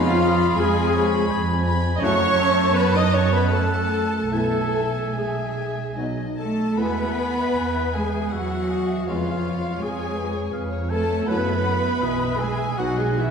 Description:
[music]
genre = classical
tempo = 72-84 BPM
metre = 3/4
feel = rubato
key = E major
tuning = A4 = 439 Hz
[part]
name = warm chamber violin section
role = melody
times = 0.0-13.3 s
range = B4 to B5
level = -32 LUFS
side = left 5 dB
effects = none
[part]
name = mellow concert flute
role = second line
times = 0.0-13.3 s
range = E5 to D#6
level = -32 LUFS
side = left 3 dB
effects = none
[part]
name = rich chamber violin section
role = second line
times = 0.0-13.3 s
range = E5 to D#6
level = -33 LUFS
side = left 2 dB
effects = none
[part]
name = warm clarinet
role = second line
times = 0.0-13.3 s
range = E4 to D#5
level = -31 LUFS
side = left 3 dB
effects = none
[part]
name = warm cor anglais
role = second line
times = 0.0-13.3 s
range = C#5 to G#5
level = -33 LUFS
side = equal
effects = none
[part]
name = warm chamber viola section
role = accompaniment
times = 0.0-13.3 s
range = E4 to D#5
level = -27 LUFS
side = equal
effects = none
[part]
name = bright trombone section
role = sustained chords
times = 0.0-13.1 s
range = B2 to G#3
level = -33 LUFS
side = right 3 dB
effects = none
[part]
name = dark French horn section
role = sustained chords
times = 0.0-13.1 s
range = A3 to E#4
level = -32 LUFS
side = left 3 dB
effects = none
[part]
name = dark trumpet section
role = stabs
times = 0.0-13.3 s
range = E4 to D#5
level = -30 LUFS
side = left 2 dB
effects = none
[part]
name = rich chamber cello section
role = bass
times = 0.0-13.3 s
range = E3 to D#4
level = -28 LUFS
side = right 2 dB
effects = none
[part]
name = warm chamber double bass section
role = bass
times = 0.0-13.3 s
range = B1 to F#2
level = -25 LUFS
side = right 2 dB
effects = none
[sound]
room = wet concert hall reverb, RT60 2.0 s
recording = dark, warm production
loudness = -20 LUFS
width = side -6 dB against mid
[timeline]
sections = 0.0-13.3 A section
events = none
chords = 0.0 C#7/E#; 2.0 F#m; 4.3 E/B; 6.0 B; 6.8 E; 9.1 C#7/E#; 11.3 F#m7; 12.0 E/B; 12.8 B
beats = 0.59 1.31 | 2.03 2.77 3.52 | 4.33 5.15 5.98 | 6.79 7.58 8.33 | 9.08 9.82 10.54 | 11.28 12.03 12.78

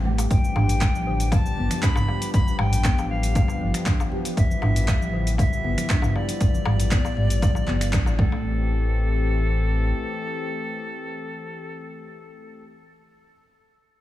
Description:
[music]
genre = afro house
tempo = 118 BPM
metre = 4/4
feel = straight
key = A minor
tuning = A4 = 440 Hz
[part]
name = warm analog pad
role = sustained chords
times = 0.0-12.6 s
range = E3 to G4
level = -33 LUFS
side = left 3 dB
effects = chorus, sidechain pumping
[part]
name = folk marimba with soft mallets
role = arpeggios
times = 0.0-8.7 s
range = D3 to G4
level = -31 LUFS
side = right 1 dB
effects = sidechain pumping
[part]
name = round analog bass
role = bass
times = 0.0-9.9 s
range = G1 to A1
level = -24 LUFS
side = left 1 dB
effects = sidechain pumping
[part]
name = congas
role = percussion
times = 0.1-8.4 s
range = none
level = -32 LUFS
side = right 2 dB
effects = none
[part]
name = afro-pop drum kit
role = drums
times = 0.2-8.2 s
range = finger snaps, handclaps, hi-hat, shaker, toms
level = -27 LUFS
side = right 1 dB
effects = none
[part]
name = darbuka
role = percussion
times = 0.2-8.4 s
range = none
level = -33 LUFS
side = left 5 dB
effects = none
[part]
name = bright reedy silver concert flute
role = melody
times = 0.3-12.6 s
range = A4 to B5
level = -31 LUFS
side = left 1 dB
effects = dub echo
[part]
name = electronic kick drum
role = drums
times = 0.3-8.3 s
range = none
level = -22 LUFS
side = equal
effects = overdrive
[sound]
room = small room ambience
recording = studio ambience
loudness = -20 LUFS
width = side -14 dB against mid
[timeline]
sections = 0.0-8.4 A section; 8.4-12.5 B section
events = drop 0.0-8.4; band accent 7.9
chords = 0.3 G7; 8.2 Am7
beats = | 0.30 0.81 1.32 1.83 | 2.34 2.85 3.36 3.86 | 4.37 4.88 5.39 5.90 | 6.41 6.92 7.42 7.93 | 8.44 8.95 9.46 9.97 | 10.47 10.98 11.49 12.00

